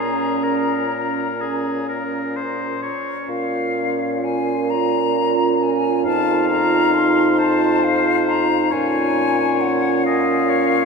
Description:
classical, slow romantic movement for wind quintet; 41-47 BPM (dotted quarters); 12/8; rubato; Bb minor; A4 = 440 Hz
bright silver concert flute; melody; 0.0-10.8 s; F5 to C6; -23 LUFS; left 6 dB
clear oboe; second line; 0.0-10.8 s; Ab4 to F5; -24 LUFS; left 4 dB
mellow French horn; accompaniment; 0.0-10.8 s; Db4 to Eb4; -23 LUFS; right 1 dB
mellow clarinet; accompaniment; 0.0-10.8 s; Db4 to F4; -24 LUFS; right 7 dB
mellow bassoon; bass; 0.0-10.8 s; F2 to Bb2; -24 LUFS; right 2 dB
wet cathedral reverb, RT60 6.4 s; -17 LUFS; side -4 dB against mid
0.0-3.3 A section; 3.3-10.8 A section
0.0 Bbm; 6.1 F5; 8.7 Bbm

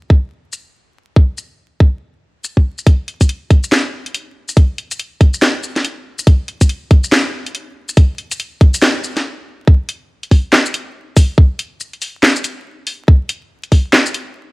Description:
dubstep; 141 BPM; 4/4; swing 61% on 16ths, half-time
electronic kick drum; drums; 0.1-13.8 s; -8 LUFS; equal
garage drum kit; drums; 0.5-14.2 s; handclaps, hi-hat, shaker, snare drum; -15 LUFS; equal
digital ambience; dry, gritty hardware recording, vinyl crackle; -12 LUFS; side -24 dB against mid
0.0-2.9 A section; 2.9-9.7 B section; 9.7-14.5 C section
build-up 2.9-9.7; stop 9.2-9.7; drop 9.7-14.5

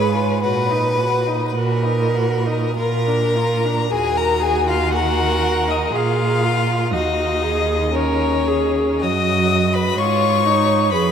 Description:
classical, slow romantic movement for string quartet; 48-63 BPM; 3/4; rubato; Eb minor; A4 = 440 Hz
rich violin; melody; 0.0-11.1 s; Db5 to Eb6; -22 LUFS; left 7 dB
clear violin; second line; 0.0-11.1 s; Db4 to Eb5; -21 LUFS; left 2 dB
clear viola; accompaniment; 0.0-11.1 s; D4 to Bb4; -23 LUFS; right 2 dB
warm cello; bass; 0.0-11.1 s; Eb2 to Bb2; -21 LUFS; right 4 dB
wet huge ambient reverb, RT60 7.1 s; in a vast, echoing space; -16 LUFS; side -8 dB against mid
0.0-3.9 A section; 3.9-11.1 B section
0.4 Ebm/Bb; 2.8 Bb; 3.9 Ebm; 5.9 Bb5; 6.9 Ebm; 10.0 Abm

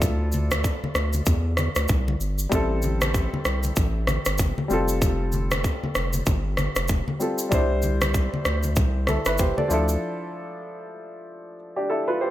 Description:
afrobeats; 96 BPM; 4/4; swing 58% on 16ths; A4 = 439 Hz
warm baby grand piano; accompaniment; 0.0-12.3 s; F3 to D5; -28 LUFS; left 1 dB
saturated sub bass; bass; 0.0-10.0 s; F1 to E2; -25 LUFS; equal
organic electronic drum kit; drums; 0.0-10.0 s; kick drum, rim click, shaker; -25 LUFS; equal
congas; percussion; 0.0-9.7 s; -31 LUFS; left 2 dB
little or no reverb; -21 LUFS; side -14 dB against mid
0.0-12.3 A section
break 10.0-12.3
0.0 Dmadd9; 2.5 Am7; 4.7 Fadd9; 7.5 Cadd9; 9.7 Dmadd9

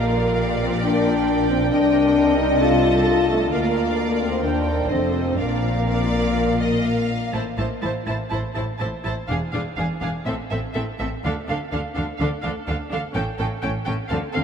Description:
classical, dramatic, fast romantic movement for symphony orchestra; 121-134 BPM; 4/4; rubato; Bb major, A minor from 7.3 s; A4 = 440 Hz
rich symphonic violin section; melody; 0.0-14.4 s; Eb5 to A5; -30 LUFS; right 3 dB
rich symphonic violin section; second line; 0.0-14.4 s; G#4 to F5; -30 LUFS; equal
rich symphonic viola section; accompaniment; 0.0-14.4 s; C4 to Bb4; -30 LUFS; equal
mellow French horn section; sustained chords; 0.0-7.0 s; A3 to F4; -20 LUFS; left 2 dB; stereo widening
rich symphonic cello section; bass; 0.0-14.4 s; D2 to D3; -28 LUFS; right 1 dB
rich symphonic double bass section; bass; 0.0-14.4 s; E1 to Eb2; -28 LUFS; right 1 dB
wet cathedral reverb, RT60 5.7 s; in a vast, echoing space; -19 LUFS; side -7 dB against mid
0.0-7.3 A section; 7.3-14.4 B section
0.0 Bb; 0.8 Gm/Bb; 1.7 Cm7; 2.6 Adim/C; 3.5 Bb/D; 4.4 Eb6; 4.9 F7; 5.4 Bb; 7.3 Am; 9.3 E7b9; 10.3 Am; 11.2 Dm; 13.2 A7

